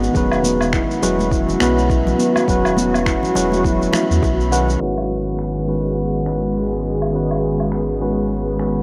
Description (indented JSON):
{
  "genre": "organic downtempo",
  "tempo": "103 BPM",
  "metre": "4/4",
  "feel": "swing 59% on 16ths",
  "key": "G# minor",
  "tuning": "A4 = 436 Hz",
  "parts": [
    { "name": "tine electric piano", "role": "accompaniment", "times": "0.0-8.8 s", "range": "D#3 to B4", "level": "-24 LUFS", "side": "equal", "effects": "overdrive, sidechain pumping, tape echo" },
    { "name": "airy breathy pad", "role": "sustained chords", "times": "0.0-8.8 s", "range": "D#3 to B4", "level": "-26 LUFS", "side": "equal", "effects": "chorus, sidechain pumping" },
    { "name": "handpan", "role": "arpeggios", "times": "0.0-4.7 s", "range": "F#3 to F#5", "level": "-24 LUFS", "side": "equal", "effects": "tape echo" },
    { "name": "warm sub bass", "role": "bass", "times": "0.0-8.8 s", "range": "E1 to E2", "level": "-26 LUFS", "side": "equal", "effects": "sidechain pumping" },
    { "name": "electronic shaker, woodblock and finger snaps", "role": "drums", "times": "0.0-8.7 s", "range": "none", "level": "-28 LUFS", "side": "equal", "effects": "low-pass filter on perc, low-pass filter on snare, low-pass filter on room" },
    { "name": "bongos and congas", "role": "percussion", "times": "0.0-4.8 s", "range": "none", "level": "-33 LUFS", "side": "equal", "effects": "none" },
    { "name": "electronic kick drum", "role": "drums", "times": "0.1-4.4 s", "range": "none", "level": "-24 LUFS", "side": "equal", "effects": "overdrive" }
  ],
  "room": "wet huge ambient reverb, RT60 8.4 s",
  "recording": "dreamy mix soaked in reverb, low-pass filter",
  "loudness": "-18 LUFS",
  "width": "mono",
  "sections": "0.0-4.8 A section; 4.8-8.8 B section",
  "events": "filter sweep on handpan 0.0-4.8; filter sweep 4.8-8.8",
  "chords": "0.1 Esus2; 4.8 G#m",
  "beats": "| 0.15 0.73 1.31 1.90 | 2.48 3.06 3.64 4.23 | 4.81 5.39 5.97 6.56 | 7.14 7.72 8.30"
}